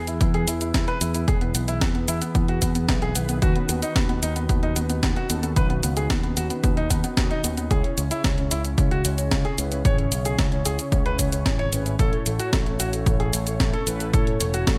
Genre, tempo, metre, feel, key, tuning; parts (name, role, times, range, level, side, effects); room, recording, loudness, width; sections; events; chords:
italo disco; 112 BPM; 4/4; straight; E major; A4 = 442 Hz
warm grand piano; melody; 0.0-14.8 s; A3 to C#5; -31 LUFS; equal; delay
mellow synth brass; stabs; 0.0-14.8 s; A2 to D#5; -33 LUFS; equal; chorus
picked electric bass with an envelope filter; bass; 0.0-14.8 s; E1 to A2; -29 LUFS; equal
clean 12-bit digital drum machine; drums; 0.1-14.8 s; cabasa, hi-hat, snare drum; -30 LUFS; equal
electronic kick drum; drums; 0.2-14.8 s; -25 LUFS; equal; overdrive
little or no reverb; -23 LUFS; mono
0.0-14.8 A section
0.0 E; 3.4 Badd9/D#; 7.7 C#m; 12.0 A